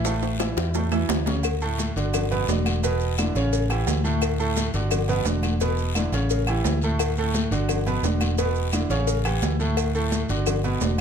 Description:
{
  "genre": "latin, salsa",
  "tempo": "173 BPM",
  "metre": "4/4",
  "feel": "straight",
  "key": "D major",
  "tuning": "A4 = 445 Hz",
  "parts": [
    { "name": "bright grand piano", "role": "accompaniment", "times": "0.0-11.0 s", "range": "A2 to E5", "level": "-27 LUFS", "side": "right 3 dB", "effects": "none" },
    { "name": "vintage muted fingered electric bass", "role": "bass", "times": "0.0-11.0 s", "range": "E1 to E2", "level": "-25 LUFS", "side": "equal", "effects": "none" },
    { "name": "bongos and cowbell", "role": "percussion", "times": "0.0-11.0 s", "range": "none", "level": "-31 LUFS", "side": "left 10 dB", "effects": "none" },
    { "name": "guiro", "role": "percussion", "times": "0.0-11.0 s", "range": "none", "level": "-38 LUFS", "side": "left 6 dB", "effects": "none" },
    { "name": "congas", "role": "percussion", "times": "0.1-11.0 s", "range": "none", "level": "-31 LUFS", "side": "left 4 dB", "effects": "none" },
    { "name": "maracas", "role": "percussion", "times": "0.1-11.0 s", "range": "none", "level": "-36 LUFS", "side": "right 8 dB", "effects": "none" },
    { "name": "timbales and agogo bells", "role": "percussion", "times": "0.1-11.0 s", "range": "none", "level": "-32 LUFS", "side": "right 10 dB", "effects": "none" },
    { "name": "claves", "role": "percussion", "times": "0.4-11.0 s", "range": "none", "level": "-35 LUFS", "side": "left 5 dB", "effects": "none" }
  ],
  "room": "light reverb",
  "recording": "close, detailed microphones",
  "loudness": "-21 LUFS",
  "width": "side -7 dB against mid",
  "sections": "0.0-1.4 A section; 1.4-11.0 B section",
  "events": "drum fill 0.1-1.4",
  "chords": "0.1 A; 1.4 D; 2.1 Gmaj7; 2.8 E5; 3.5 A7; 4.2 D; 4.9 Gmaj7; 5.6 E5; 6.3 A7; 7.0 D; 7.7 Gmaj7; 8.4 E5; 9.1 A7; 9.8 D; 10.5 Gmaj7"
}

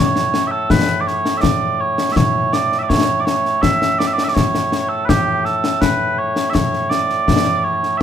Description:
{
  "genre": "scottish traditional, Scottish pipe music",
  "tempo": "82 BPM",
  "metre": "3/4",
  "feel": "straight",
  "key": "A major",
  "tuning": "A4 = 440 Hz",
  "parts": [
    { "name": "mellow small bagpipes", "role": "melody", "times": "0.0-8.0 s", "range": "A2 to E5", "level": "-17 LUFS", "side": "right 2 dB", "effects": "none" },
    { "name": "concert snare drum and concert bass drum", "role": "drums", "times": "0.2-7.9 s", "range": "none", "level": "-18 LUFS", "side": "left 3 dB", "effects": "none" }
  ],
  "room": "moderate stone room reverb, RT60 1.1 s",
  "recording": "band playing live in one room",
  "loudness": "-14 LUFS",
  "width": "side -9 dB against mid",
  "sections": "0.0-8.0 A section",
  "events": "none",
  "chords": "none"
}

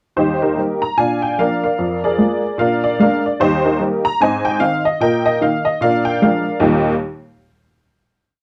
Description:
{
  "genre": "jazz, stride piano",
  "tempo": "149 BPM",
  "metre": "4/4",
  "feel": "swing 62% on 8ths",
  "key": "Eb major",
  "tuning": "A4 = 439 Hz",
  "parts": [
    { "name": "honky-tonk upright piano", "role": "solo", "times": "0.2-6.9 s", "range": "Eb2 to Bb5", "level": "-17 LUFS", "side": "equal", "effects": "none" }
  ],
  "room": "little or no reverb",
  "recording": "dry, close 1970s-style studio recording",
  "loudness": "-17 LUFS",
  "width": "mono",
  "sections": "0.2-6.6 A section; 6.6-8.2 final chord",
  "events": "none",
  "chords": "0.2 Eb; 1.0 Bb; 1.8 Bb7/F; 2.6 Bb7; 3.4 Eb; 4.2 Ab; 5.0 Eb5/Bb; 5.8 Bb7; 6.6 Eb"
}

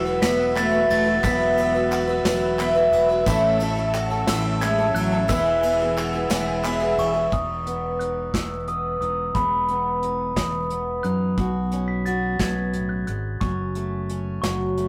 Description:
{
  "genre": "indie folk with a building arrangement",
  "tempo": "59 BPM (dotted quarters)",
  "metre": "6/8",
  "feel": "straight",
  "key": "E major",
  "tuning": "A4 = 441 Hz",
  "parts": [
    { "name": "glockenspiel with rubber mallets", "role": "melody", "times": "0.0-14.9 s", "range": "B5 to B6", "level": "-30 LUFS", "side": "equal", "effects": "none" },
    { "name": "bright cello", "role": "second line", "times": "0.0-6.9 s", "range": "E3 to B3", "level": "-31 LUFS", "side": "equal", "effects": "none" },
    { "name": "dark grand piano", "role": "accompaniment", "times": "0.0-7.3 s", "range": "A1 to G#5", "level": "-34 LUFS", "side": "equal", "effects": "none" },
    { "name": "picked twelve-string acoustic guitar", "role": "accompaniment", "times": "0.0-7.3 s", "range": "A2 to B4", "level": "-28 LUFS", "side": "equal", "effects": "none" },
    { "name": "mellow tonewheel organ", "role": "sustained chords", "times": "0.0-7.3 s", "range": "B4 to E6", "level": "-34 LUFS", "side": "equal", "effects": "slow rotary speaker" },
    { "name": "mandolin", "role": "arpeggios", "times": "0.0-7.3 s", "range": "E4 to F#4", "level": "-25 LUFS", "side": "equal", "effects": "none" },
    { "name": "fingered electric bass", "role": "bass", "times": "0.0-14.9 s", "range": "E1 to F#2", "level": "-30 LUFS", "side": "equal", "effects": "none" },
    { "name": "tambourine", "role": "percussion", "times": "0.1-6.7 s", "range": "none", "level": "-44 LUFS", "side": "equal", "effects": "none" },
    { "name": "soft brush drum kit", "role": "drums", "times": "0.2-14.9 s", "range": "hi-hat, kick drum, ride cymbal, snare drum", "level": "-31 LUFS", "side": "equal", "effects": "none" },
    { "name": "group handclap", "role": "percussion", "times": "0.6-6.9 s", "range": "none", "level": "-35 LUFS", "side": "equal", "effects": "none" },
    { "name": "fingerpicked steel-string acoustic guitar", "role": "accompaniment", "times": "7.3-14.9 s", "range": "E2 to F#4", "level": "-32 LUFS", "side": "equal", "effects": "none" }
  ],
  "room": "wet small room reverb, RT60 0.6 s",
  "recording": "rough rehearsal-room recording, warm saturation",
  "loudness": "-22 LUFS",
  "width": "mono",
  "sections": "0.0-7.3 A section; 7.3-14.9 B section",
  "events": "grand piano fill 6.3-7.3",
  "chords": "0.0 Esus2; 3.3 A; 5.3 E; 7.3 E5; 11.4 Bsus2; 13.4 F#m"
}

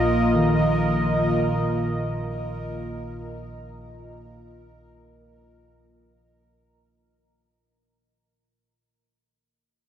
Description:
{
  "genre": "dark ambient drone",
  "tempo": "free time",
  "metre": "none",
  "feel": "none",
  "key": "unclear",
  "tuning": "A4 = 439 Hz",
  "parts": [
    { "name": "dark analog pad", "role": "sustained chords", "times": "0.0-6.4 s", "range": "Bb3 to Eb5", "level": "-25 LUFS", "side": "equal", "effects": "chorus" },
    { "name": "analog drone", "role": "drone", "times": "0.0-6.5 s", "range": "Bb1 to Bb2", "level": "-29 LUFS", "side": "equal", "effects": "chorus" },
    { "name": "bubbling stepped-filter texture", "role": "texture", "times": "0.0-6.4 s", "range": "Bb4", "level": "-35 LUFS", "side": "right 2 dB", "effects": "chorus, built-in reverb" },
    { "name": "gamelan-type bronze metallophone", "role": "arpeggios", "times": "0.4-7.4 s", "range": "Eb3", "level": "-27 LUFS", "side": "equal", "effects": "none" }
  ],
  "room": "wet cathedral reverb, RT60 5.9 s",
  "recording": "dark, warm production",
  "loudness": "-21 LUFS",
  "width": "side -9 dB against mid",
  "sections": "0.0-6.4 A section",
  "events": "fade-out 0.0-6.4",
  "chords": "0.0 Bb5"
}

